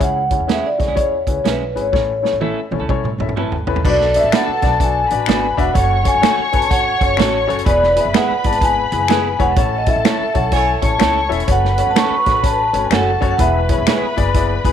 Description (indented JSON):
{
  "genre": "uptempo 1960s-style soul",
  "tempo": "126 BPM",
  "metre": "4/4",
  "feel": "swing 64% on 8ths",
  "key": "B dorian",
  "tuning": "A4 = 440 Hz",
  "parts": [
    { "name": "vibraphone with soft mallets", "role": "melody", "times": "0.0-14.1 s", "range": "B4 to C#6", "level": "-18 LUFS", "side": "equal", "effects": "tape echo" },
    { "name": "warm upright piano", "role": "accompaniment", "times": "0.0-14.7 s", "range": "A2 to E5", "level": "-22 LUFS", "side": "left 11 dB", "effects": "none" },
    { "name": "upright bass", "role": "bass", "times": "0.0-14.7 s", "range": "E1 to A2", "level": "-22 LUFS", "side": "equal", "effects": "none" },
    { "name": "natural country drum kit", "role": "drums", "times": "0.0-14.7 s", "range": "crash cymbal, hi-hat, kick drum, snare drum, toms", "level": "-19 LUFS", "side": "right 3 dB", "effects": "none" },
    { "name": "clean electric guitar", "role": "stabs", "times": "0.5-14.1 s", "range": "G#3 to B4", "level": "-27 LUFS", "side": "right 11 dB", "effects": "wide subtle chorus" },
    { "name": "muted studio string section", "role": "second line", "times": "3.8-14.7 s", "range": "A4 to C#6", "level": "-23 LUFS", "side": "left 4 dB", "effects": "none" },
    { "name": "finger snap", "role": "percussion", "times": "4.3-14.0 s", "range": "none", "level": "-26 LUFS", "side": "left 12 dB", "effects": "none" },
    { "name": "bright horn section", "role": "second line", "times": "10.5-10.9 s", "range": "A3 to C#5", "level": "-25 LUFS", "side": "right 12 dB", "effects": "none" }
  ],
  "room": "light reverb, studio reverb",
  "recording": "1960s-style stereo with parts hard left and right",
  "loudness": "-14 LUFS",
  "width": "side -9 dB against mid",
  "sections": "0.0-3.8 A section; 3.8-14.7 B section",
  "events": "drum fill 1.9-3.8; band accent 9.6-11.5",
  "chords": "0.0 C#m; 1.9 A; 3.8 Bm; 5.8 F#m; 7.7 E; 9.6 A; 11.5 F#m; 13.4 E"
}